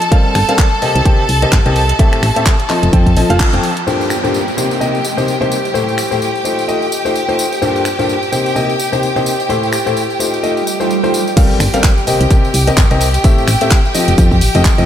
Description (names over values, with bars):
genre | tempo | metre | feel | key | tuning
piano house | 128 BPM | 4/4 | swing 57% on 16ths | G minor | A4 = 440 Hz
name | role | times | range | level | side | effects
clear chamber violin section | sustained chords | 0.0-14.9 s | G4 to A5 | -19 LUFS | equal | sidechain pumping
house drum kit | drums | 0.0-14.9 s | crash cymbal, finger snaps, handclaps, hi-hat, tambourine | -21 LUFS | equal | none
clear grand piano | riff | 0.1-14.9 s | G2 to G5 | -16 LUFS | left 2 dB | sidechain pumping, tape echo
electronic kick drum | drums | 0.1-3.5, 11.4-14.8 s | none | -11 LUFS | equal | none
solid FM bass | bass | 0.3-3.6, 11.6-14.8 s | F1 to F2 | -14 LUFS | equal | sidechain pumping
downlifter, swell and impact | sound effects | 3.9-7.6, 10.6-13.2 s | none | -23 LUFS | right 2 dB | none
room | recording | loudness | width
moderate church reverb, RT60 2.7 s | dreamy mix soaked in reverb | -11 LUFS | side -10 dB against mid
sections
0.0-3.9 A section; 3.9-11.4 B section; 11.4-14.9 C section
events
band accent 3.4; swell 10.6-11.4; drop 11.4-14.9; impact 11.4-13.2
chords
0.1 Gm11; 0.8 Cm7; 2.0 Am7; 2.7 F7; 3.9 Gm11; 4.6 Cm7; 5.7 Am7; 6.4 F7; 7.6 Gm11; 8.3 Cm7; 9.5 Am7; 10.2 F7; 11.4 Gm11; 12.1 Cm7; 13.2 Am7; 13.9 F7